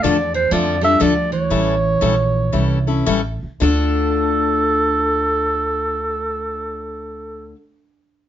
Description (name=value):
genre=acoustic string swing (jazz manouche)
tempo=107-125 BPM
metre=4/4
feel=swing 65% on 8ths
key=D minor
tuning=A4 = 440 Hz
part: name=warm clarinet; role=melody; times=0.0-7.5 s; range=A4 to E5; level=-19 LUFS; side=right 2 dB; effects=none
part: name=picked steel-string acoustic guitar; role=second line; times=0.0-7.5 s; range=E3 to D4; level=-25 LUFS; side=right 5 dB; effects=none
part: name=picked steel-string acoustic guitar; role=accompaniment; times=0.0-7.6 s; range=D3 to A4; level=-21 LUFS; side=left 7 dB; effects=none
part: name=upright bass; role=bass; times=0.0-7.5 s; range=A1 to F2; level=-23 LUFS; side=right 1 dB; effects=none
room=light reverb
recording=nothing above 7.6 kHz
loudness=-16 LUFS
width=side -11 dB against mid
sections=0.0-3.6 A section; 3.6-8.1 B section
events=slowing down 0.0-3.6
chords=0.0 Dm; 1.5 A7#9; 3.6 Dm